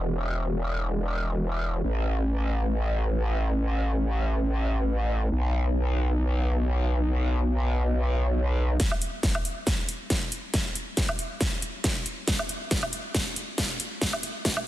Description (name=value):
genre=heavy wobble dubstep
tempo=138 BPM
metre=4/4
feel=swing 54% on 16ths, half-time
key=unclear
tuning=A4 = 440 Hz
part: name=growl bass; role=bass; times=0.0-8.8 s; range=E1 to B1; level=-24 LUFS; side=equal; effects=chorus, overdrive
part: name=dubstep drum kit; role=drums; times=8.8-14.6 s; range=hi-hat, snare drum, woodblock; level=-28 LUFS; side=equal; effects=high-pass filter on snare, low-pass filter on snare, high-pass filter on hats, low-pass filter on hats, high-pass filter on perc, low-pass filter on perc
part: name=electronic kick drum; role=drums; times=8.8-14.5 s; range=none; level=-29 LUFS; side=equal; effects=distortion
room=little or no reverb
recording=dense, heavily limited modern master, high-pass filter, lossy compression artefacts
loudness=-24 LUFS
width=side -14 dB against mid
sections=0.0-8.8 A section; 8.8-14.7 B section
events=build-up 8.8-14.7; drum fill 8.8-14.7; filter sweep 8.8-14.7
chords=none